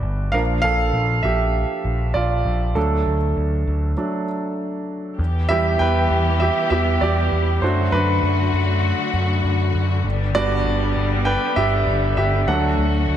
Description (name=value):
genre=pop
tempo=99 BPM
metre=4/4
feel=straight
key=unclear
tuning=A4 = 440 Hz
part: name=clear concert grand piano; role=accompaniment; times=0.0-13.2 s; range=F3 to G5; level=-21 LUFS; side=right 2 dB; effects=none
part: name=overdriven picked electric bass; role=bass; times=0.0-13.2 s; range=G1 to F#2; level=-20 LUFS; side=equal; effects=none
part: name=rich studio string section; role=sustained chords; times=5.2-13.2 s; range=D3 to G4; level=-25 LUFS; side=left 4 dB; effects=none
room=moderate lush hall reverb, RT60 2.0 s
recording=dreamy mix soaked in reverb, faint mains hum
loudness=-18 LUFS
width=side -10 dB against mid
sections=0.0-5.2 A section; 5.2-13.2 B section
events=grand piano solo 0.0-5.2, 5.2-13.2; stop 4.0-5.2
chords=0.3 Bb; 2.8 D; 5.2 Em; 7.6 D/F#; 10.0 G; 12.5 D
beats=| 0.33 0.94 1.55 2.15 | 2.76 3.37 3.98 4.58 | 5.19 5.80 6.41 7.01 | 7.62 8.23 8.83 9.44 | 10.05 10.65 11.26 11.87 | 12.48 13.08